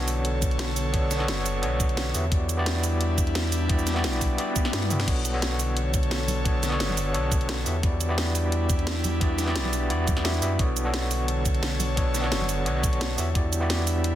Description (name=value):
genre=liquid drum and bass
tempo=174 BPM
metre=4/4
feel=swing 53% on 16ths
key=B minor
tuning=A4 = 440 Hz
part: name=overdriven tine electric piano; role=accompaniment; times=0.0-14.2 s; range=B3 to E5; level=-30 LUFS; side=equal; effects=medium tremolo, ping-pong delay
part: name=airy breathy pad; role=sustained chords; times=0.0-14.2 s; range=D3 to C#5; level=-31 LUFS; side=equal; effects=chorus
part: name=sub bass with octave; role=bass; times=0.0-14.2 s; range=F#1 to G2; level=-27 LUFS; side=equal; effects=none
part: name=drum and bass drum kit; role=drums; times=0.1-14.1 s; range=crash cymbal, hi-hat, shaker, snare drum, toms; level=-30 LUFS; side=right 1 dB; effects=studio reverb
part: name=electronic kick drum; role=drums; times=0.4-13.4 s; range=none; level=-25 LUFS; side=equal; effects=studio reverb
part: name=swell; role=sound effects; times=4.5-5.1 s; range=none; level=-36 LUFS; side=right 1 dB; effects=none
part: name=congas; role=percussion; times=6.3-7.0, 9.0-12.5 s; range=none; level=-37 LUFS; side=right 3 dB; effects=none
room=digital ambience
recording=dense, heavily limited modern master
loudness=-23 LUFS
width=side -12 dB against mid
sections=0.0-14.2 A section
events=swell 4.5-5.1; drum fill 4.8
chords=0.0 Bm9; 2.1 Em9; 5.1 Bm9; 7.7 Em9; 10.6 Bm9; 13.2 Em9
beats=0.25 0.59 | 0.94 1.28 1.63 1.97 | 2.32 2.66 3.01 3.35 | 3.70 4.04 4.39 4.73 | 5.08 5.42 5.77 6.11 | 6.46 6.80 7.15 7.49 | 7.83 8.18 8.53 8.87 | 9.21 9.56 9.90 10.25 | 10.59 10.94 11.28 11.63 | 11.97 12.32 12.66 13.01 | 13.35 13.70 14.04